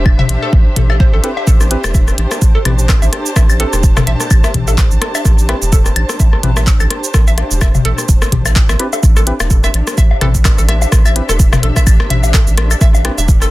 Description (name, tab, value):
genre	minimal techno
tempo	127 BPM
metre	4/4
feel	swing 56% on 16ths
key	A minor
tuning	A4 = 444 Hz
part	round analog bass	bass	0.0-13.5 s	E1 to A1	-15 LUFS	equal	sidechain pumping
part	dark studio string section	texture	0.0-13.5 s	D4 to A5	-24 LUFS	equal	sidechain pumping
part	electronic kick drum	drums	0.1-13.4 s	none	-10 LUFS	equal	none
part	booming analog drum machine	percussion	0.1-13.5 s	rim click, toms, woodblock	-19 LUFS	left 4 dB	overdrive, tape echo
part	hollow square pluck	riff	0.2-13.4 s	G4 to E5	-24 LUFS	right 1 dB	lush chorus, vintage 12-bit sampler grit, sidechain pumping, dub echo
part	minimal click drum kit	drums	0.3-13.5 s	cabasa, handclaps, hi-hat	-20 LUFS	right 2 dB	none
part	percussive organ stab	stabs	1.2-13.1 s	C4 to B4	-24 LUFS	equal	chorus, tape echo
room	little or no reverb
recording	dense, heavily limited modern master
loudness	-10 LUFS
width	side -18 dB against mid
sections	0.0-9.0 A section; 9.0-13.5 B section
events	drop 9.0-13.5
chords	0.0 Am7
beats	0.06 0.53 1.00 | 1.47 1.95 2.42 2.89 | 3.36 3.84 4.31 4.78 | 5.25 5.72 6.20 6.67 | 7.14 7.62 8.09 8.56 | 9.03 9.51 9.98 10.45 | 10.92 11.39 11.87 12.34 | 12.81 13.28